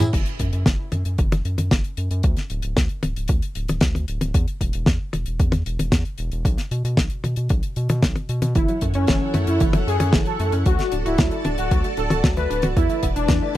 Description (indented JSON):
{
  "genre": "italo disco",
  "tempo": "114 BPM",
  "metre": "4/4",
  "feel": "straight",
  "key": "F# minor",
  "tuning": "A4 = 440 Hz",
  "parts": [
    { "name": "analog synth brass", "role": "melody", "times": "0.0, 8.6-13.5 s", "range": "C#4 to B4", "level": "-25 LUFS", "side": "equal", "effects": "chorus, vintage 12-bit sampler grit, tape echo" },
    { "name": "string machine, full ensemble", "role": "sustained chords", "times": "0.0-0.1, 8.6-13.6 s", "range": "E4 to A5", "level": "-29 LUFS", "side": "left 1 dB", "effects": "ensemble chorus" },
    { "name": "analog pluck", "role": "arpeggios", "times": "0.0-0.1, 8.6-13.5 s", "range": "E3 to F#4", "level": "-30 LUFS", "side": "right 2 dB", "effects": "chorus, tape echo" },
    { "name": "round analog bass", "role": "bass", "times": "0.0-13.4 s", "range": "D1 to B2", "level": "-24 LUFS", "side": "equal", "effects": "tube saturation" },
    { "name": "damped 70s drum kit", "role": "drums", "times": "0.0-13.6 s", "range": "crash cymbal, hi-hat, snare drum, tambourine, toms", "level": "-23 LUFS", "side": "left 1 dB", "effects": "none" },
    { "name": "electronic kick drum", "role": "drums", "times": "0.1-13.4 s", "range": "none", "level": "-22 LUFS", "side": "equal", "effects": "overdrive" }
  ],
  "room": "little or no reverb",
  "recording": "dry, close 1970s-style studio recording",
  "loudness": "-19 LUFS",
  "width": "side -15 dB against mid",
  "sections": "0.1-13.6 A section",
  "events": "none",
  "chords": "0.1 N.C.; 8.6 F#m7; 10.7 D; 12.8 E7sus4"
}